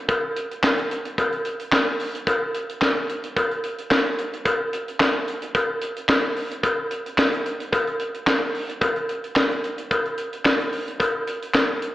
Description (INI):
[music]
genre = funk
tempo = 110 BPM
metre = 4/4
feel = straight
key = none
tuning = none
[part]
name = tight funk drum kit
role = drums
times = 0.1-11.9 s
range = handclaps, hi-hat, kick drum, snare drum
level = -24 LUFS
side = equal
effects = none
[part]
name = cowbell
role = percussion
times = 0.1-11.7 s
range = none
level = -24 LUFS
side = left 1 dB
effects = none
[sound]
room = wet concert hall reverb, RT60 1.9 s, small room ambience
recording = big arena sound, AM radio sound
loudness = -21 LUFS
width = side -15 dB against mid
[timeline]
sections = 0.0-11.9 A section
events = none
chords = none